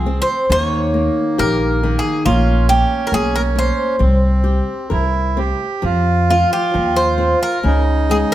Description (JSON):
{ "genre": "fado-style ballad", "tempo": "67 BPM", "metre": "2/4", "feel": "uneven beats, rubato", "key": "F minor", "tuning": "A4 = 441 Hz", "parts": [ { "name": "Greek bouzouki", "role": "melody", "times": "0.0-8.3 s", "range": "F4 to Db5", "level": "-19 LUFS", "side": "equal", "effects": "none" }, { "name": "accordion", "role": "second line", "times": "0.0-8.3 s", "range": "Bb3 to G4", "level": "-22 LUFS", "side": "right 4 dB", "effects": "none" }, { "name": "flamenco guitar", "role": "accompaniment", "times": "0.0-8.3 s", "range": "Db3 to Bb4", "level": "-22 LUFS", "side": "left 2 dB", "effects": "none" }, { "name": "upright bass", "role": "bass", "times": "0.0-8.2 s", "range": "Bb1 to F2", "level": "-17 LUFS", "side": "equal", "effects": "none" } ], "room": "light reverb", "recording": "close, detailed microphones", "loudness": "-14 LUFS", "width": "side -13 dB against mid", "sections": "0.0-8.3 A section", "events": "none", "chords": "0.5 Eb7; 2.3 Bbm; 4.0 C5; 5.8 F5; 7.6 Dbsus2" }